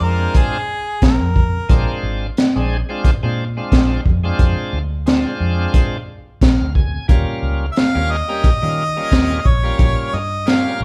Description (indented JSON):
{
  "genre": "straight-eighth soul blues",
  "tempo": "89 BPM",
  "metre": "4/4",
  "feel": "swing 56% on 16ths",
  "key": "Bb mixolydian",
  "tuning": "A4 = 440 Hz",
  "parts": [
    { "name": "warm harmonica", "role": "melody", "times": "0.0-2.0, 7.7-10.8 s", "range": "Ab4 to F5", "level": "-24 LUFS", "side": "equal", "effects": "overdrive" },
    { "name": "bright tonewheel organ", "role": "accompaniment", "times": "0.0-10.8 s", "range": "G3 to Ab5", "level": "-27 LUFS", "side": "equal", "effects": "overdrive, slow rotary speaker" },
    { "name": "vintage muted fingered electric bass", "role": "bass", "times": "0.0-10.8 s", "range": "Ab1 to Eb3", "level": "-23 LUFS", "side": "equal", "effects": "none" },
    { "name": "crunchy breakbeat drum kit", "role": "drums", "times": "0.3-10.6 s", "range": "hi-hat, kick drum, snare drum", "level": "-18 LUFS", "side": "equal", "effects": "none" }
  ],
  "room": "light reverb",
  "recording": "band playing live in one room",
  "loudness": "-17 LUFS",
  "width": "mono",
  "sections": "0.0-10.8 A section",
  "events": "tonewheel organ fill 6.1-7.1",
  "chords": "0.0 Bb9; 7.1 Eb9"
}